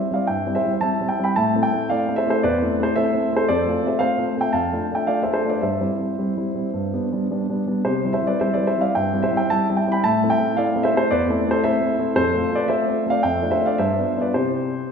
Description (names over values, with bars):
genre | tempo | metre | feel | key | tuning
classical-period piano sonatina | 111 BPM | 4/4 | rubato | C major | A4 = 440 Hz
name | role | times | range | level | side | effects
warm concert grand piano | solo | 0.0-14.9 s | E2 to B5 | -18 LUFS | equal | none
room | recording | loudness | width
wet scoring stage reverb, RT60 1.7 s | recorded in a church or concert hall | -19 LUFS | side -6 dB against mid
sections
0.0-14.9 A section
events
none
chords
0.0 C; 1.4 Am; 3.5 F; 4.6 Dm/F; 5.6 C/G; 6.8 G; 7.9 C; 10.0 Am; 12.2 F; 13.2 Dm/F; 13.8 G7; 14.4 C